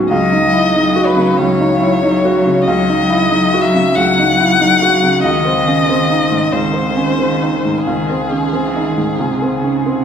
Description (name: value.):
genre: neoclassical piano and strings.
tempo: 93 BPM.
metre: 4/4.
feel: rubato.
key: C# minor.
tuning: A4 = 440 Hz.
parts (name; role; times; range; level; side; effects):
warm cello; second line; 0.0-10.0 s; B#2 to F#3; -20 LUFS; right 1 dB; none.
clear upright piano; accompaniment; 0.0-10.0 s; C#2 to F#4; -14 LUFS; right 1 dB; none.
warm violin; melody; 0.1-10.0 s; G#4 to F#5; -16 LUFS; left 4 dB; none.
room: wet scoring stage reverb, RT60 1.8 s.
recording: recorded in a church or concert hall.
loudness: -11 LUFS.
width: side -8 dB against mid.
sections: 0.0-10.0 A section.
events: none.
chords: 0.1 C#madd9; 5.2 G#/C#.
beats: | 0.11 0.75 1.39 2.03 | 2.67 3.31 3.96 4.60 | 5.25 5.89 6.53 7.19 | 7.86 8.54 9.20 9.86.